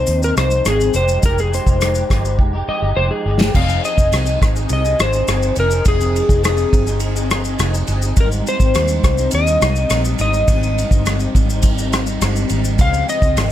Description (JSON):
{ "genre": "indie pop, bedroom pop", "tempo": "104 BPM", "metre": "4/4", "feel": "straight", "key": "F minor", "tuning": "A4 = 440 Hz", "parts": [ { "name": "clean lap steel guitar", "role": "melody", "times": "0.0-13.5 s", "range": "Ab4 to F5", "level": "-19 LUFS", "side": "left 2 dB", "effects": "analog chorus, ping-pong delay" }, { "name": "electric guitar through a small old amp", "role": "accompaniment", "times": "0.0-13.5 s", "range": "Ab2 to Ab4", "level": "-23 LUFS", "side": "left 2 dB", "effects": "ensemble chorus, vibrato effect" }, { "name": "vintage muted fingered electric bass", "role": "bass", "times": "0.0-13.5 s", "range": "F1 to Eb2", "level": "-19 LUFS", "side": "equal", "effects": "none" }, { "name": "unplugged drum kit", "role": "drums", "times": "0.1-13.5 s", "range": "crash cymbal, hi-hat, kick drum, ride cymbal, rim click, shaker, snare drum", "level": "-18 LUFS", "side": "equal", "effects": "none" } ], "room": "little or no reverb", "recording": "none", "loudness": "-14 LUFS", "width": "side -12 dB against mid", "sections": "0.0-3.5 A section; 3.5-13.5 B section", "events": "electric slide guitar solo 0.0-3.5; drum fill 2.4-3.5", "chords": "0.0 Ab6; 0.9 Fm9; 3.5 Fm7; 8.2 Abmaj7; 12.8 Dbmaj7" }